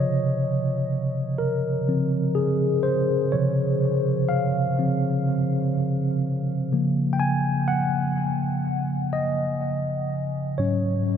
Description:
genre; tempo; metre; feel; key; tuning
R&B; 62 BPM; 4/4; swing 58% on 16ths; Db major; A4 = 440 Hz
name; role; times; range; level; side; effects
mellow tine electric piano; solo; 0.0-11.2 s; Ab2 to Ab5; -21 LUFS; equal; medium stereo tremolo, analog delay
room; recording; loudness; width
wet huge ambient reverb, RT60 5.2 s; dreamy mix soaked in reverb; -21 LUFS; side -8 dB against mid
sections
0.0-11.2 A section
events
tine electric piano solo 0.0-11.2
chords
0.0 Dbmaj7; 6.7 Gbmaj7/Db; 10.6 Ab7sus4

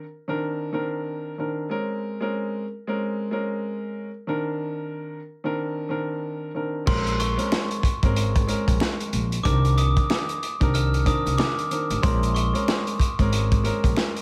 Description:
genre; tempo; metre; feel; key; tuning
hip hop, boom-bap hip-hop; 93 BPM; 4/4; swing 60% on 16ths; unclear; A4 = 440 Hz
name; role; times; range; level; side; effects
dark upright piano; accompaniment; 0.0-14.2 s; Eb3 to Bb4; -30 LUFS; equal; high-pass filter, low-pass filter
glockenspiel with hard plastic mallets; melody; 6.9-12.8 s; C6 to F6; -32 LUFS; equal; high-pass filter, low-pass filter, delay
upright bass; bass; 6.9-13.9 s; Ab1 to C2; -26 LUFS; equal; none
crunchy breakbeat drum kit; drums; 6.9-14.2 s; crash cymbal, hi-hat, kick drum, snare drum; -26 LUFS; equal; none
finger snap; percussion; 7.5-14.1 s; none; -41 LUFS; equal; none
room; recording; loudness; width
light reverb; none; -25 LUFS; mono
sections
0.0-6.9 A section; 6.9-14.2 B section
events
none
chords
0.0 Cm9; 1.7 Bbm9; 4.3 Cm9; 6.9 Bbm9; 9.5 Cm9; 12.0 Bbm9

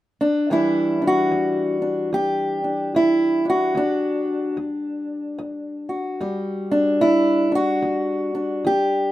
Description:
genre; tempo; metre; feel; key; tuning
acoustic country blues, solo or duo; 74 BPM; 4/4; swing 62% on 8ths; E minor; A4 = 441 Hz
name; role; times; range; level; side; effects
fingerpicked acoustic archtop guitar; solo; 0.2-9.1 s; E2 to G4; -19 LUFS; equal; none
room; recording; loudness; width
moderate studio reverb, RT60 0.5 s; minimal, uncompressed stereo recording; -19 LUFS; side -15 dB against mid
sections
0.5-9.1 A section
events
none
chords
0.5 Em9

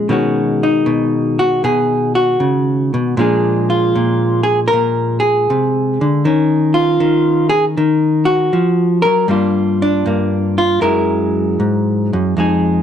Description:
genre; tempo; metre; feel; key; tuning
solo jazz; 78 BPM; 4/4; swing 69% on 8ths, rubato; unclear; A4 = 439 Hz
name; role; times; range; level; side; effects
hollow-body jazz guitar; solo; 0.0-12.8 s; F2 to Bb4; -12 LUFS; equal; none
room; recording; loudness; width
light reverb; dark, warm production; -12 LUFS; side -9 dB against mid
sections
0.1-12.8 A section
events
none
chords
0.1 B69; 3.2 Bb7; 6.2 Ebm9; 9.3 Gm7; 10.8 Gb9

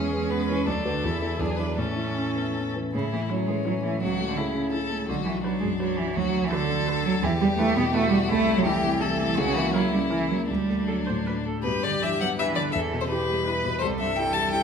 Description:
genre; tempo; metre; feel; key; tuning
quick classical-period movement for piano quartet; 167 BPM; 3/4; rubato; A major, G major from 7.2 s; A4 = 442 Hz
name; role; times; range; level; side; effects
clear violin; melody; 0.0-14.6 s; C#4 to A5; -29 LUFS; left 6 dB; none
rich cello; second line; 0.0-14.6 s; B2 to B3; -27 LUFS; right 5 dB; none
dark concert grand piano; accompaniment; 0.0-14.6 s; B1 to B4; -28 LUFS; left 2 dB; none
rich viola; accompaniment; 0.0-14.6 s; B3 to C5; -34 LUFS; right 2 dB; none
room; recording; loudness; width
wet recital hall reverb, RT60 1.6 s; minimal, uncompressed stereo recording; -23 LUFS; side -6 dB against mid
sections
0.0-2.9 A section; 2.9-11.7 A section; 11.7-14.6 B section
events
none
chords
0.0 C#m/E; 0.7 Bm/D; 1.0 A5/E; 1.4 E7; 1.8 A; 4.0 A/C#; 5.1 Bm; 6.2 Bm/D; 7.2 Em; 8.3 Am/C; 9.4 F#7/C#; 10.5 D; 11.7 G; 12.7 Em; 13.8 C

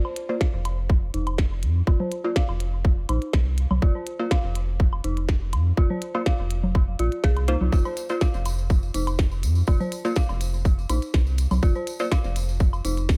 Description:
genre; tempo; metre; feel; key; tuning
minimal techno; 123 BPM; 4/4; straight; unclear; A4 = 439 Hz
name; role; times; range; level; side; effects
dark detuned synth bell; riff; 0.0-12.9 s; Eb4 to F5; -34 LUFS; equal; chorus, sidechain pumping, low-pass filter, dub echo
woodblock and congas; percussion; 0.0-12.8 s; none; -33 LUFS; equal; small room ambience, digital delay
minimal click drum kit; drums; 0.2-13.2 s; hi-hat, snare drum; -33 LUFS; equal; overdrive, small room ambience
wavetable chord stab; stabs; 0.3-12.1 s; Bb3 to C5; -35 LUFS; equal; digital delay
electronic kick drum; drums; 0.4-13.2 s; none; -23 LUFS; equal; small room ambience
rubbery square bass; bass; 0.5-13.2 s; F1 to F2; -27 LUFS; equal; sidechain pumping
tambourine; percussion; 7.7-13.2 s; none; -43 LUFS; equal; none
room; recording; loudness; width
little or no reverb; none; -24 LUFS; mono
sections
0.0-13.2 A section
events
filter sweep on synth bell 0.0-13.2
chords
0.0 F5

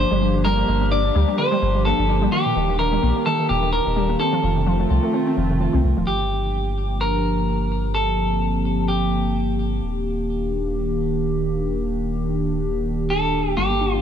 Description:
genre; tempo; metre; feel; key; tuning
IDM; 128 BPM; 4/4; swing 56% on 16ths; G minor; A4 = 441 Hz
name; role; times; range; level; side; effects
clean electric guitar; melody; 0.0-9.5, 13.1-14.0 s; G4 to D5; -23 LUFS; equal; ping-pong delay
hollow soft pad; sustained chords; 0.0-14.0 s; Eb3 to G4; -24 LUFS; right 1 dB; chorus
warbly dusty pluck; arpeggios; 0.0-6.0, 13.6-14.0 s; F2 to D4; -24 LUFS; equal; ensemble chorus, tape echo
warm sub bass; bass; 0.0-14.0 s; Eb1 to D2; -23 LUFS; equal; none
room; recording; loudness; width
moderate lush hall reverb, RT60 3.2 s; none; -18 LUFS; side -8 dB against mid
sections
0.0-6.1 A section; 6.1-14.0 B section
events
none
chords
0.0 Gm7; 2.3 Ebmaj7; 4.2 F7; 6.1 Gm7; 9.8 Ebmaj7

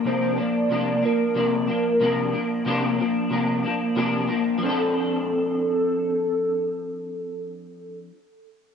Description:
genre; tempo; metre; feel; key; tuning
indie pop, bedroom pop; 92 BPM; 4/4; straight; F major; A4 = 439 Hz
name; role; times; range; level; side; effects
electric guitar through a small old amp; accompaniment; 0.0-8.2 s; C3 to A4; -23 LUFS; left 1 dB; ensemble chorus, vibrato effect
warbly nostalgic lead; melody; 0.1-8.0 s; A4 to D5; -25 LUFS; right 1 dB; phaser, ensemble chorus
room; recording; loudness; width
light reverb; cassette tape, nothing above 10.6 kHz; -21 LUFS; side -7 dB against mid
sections
0.0-4.6 A section; 4.6-7.2 B section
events
none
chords
0.0 C9sus4; 4.6 F6

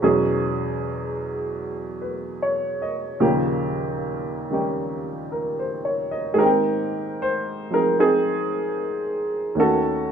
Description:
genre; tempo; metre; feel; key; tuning
jazz ballad; 76 BPM; 4/4; swing 67% on 8ths; Ab major; A4 = 443 Hz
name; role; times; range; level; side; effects
warm upright piano; solo; 0.0-10.1 s; Eb2 to G5; -21 LUFS; right 1 dB; none
room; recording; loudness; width
wet studio reverb, RT60 0.7 s; heard from further back in the room; -21 LUFS; side -7 dB against mid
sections
0.0-6.4 A section; 6.4-10.1 B section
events
none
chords
0.0 E69; 3.2 Eb9; 6.4 Abmaj9; 9.6 Ebm7b5

